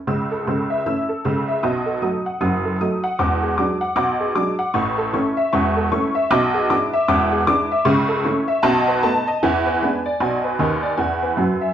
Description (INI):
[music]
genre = jazz, stride piano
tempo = 154 BPM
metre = 4/4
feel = swing 60% on 8ths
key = A major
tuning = A4 = 440 Hz
[part]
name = honky-tonk upright piano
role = solo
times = 0.1-11.7 s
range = E1 to E6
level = -17 LUFS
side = equal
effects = none
[sound]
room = wet studio reverb, RT60 0.5 s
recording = heard from further back in the room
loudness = -17 LUFS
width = side -9 dB against mid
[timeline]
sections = 0.1-11.7 A section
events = honky-tonk piano fill 11.4-11.7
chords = 0.1 A/C#; 1.6 B7; 3.2 E9; 4.7 A; 6.3 E7/B; 7.9 A/C#; 8.6 B7; 9.4 E7; 11.0 E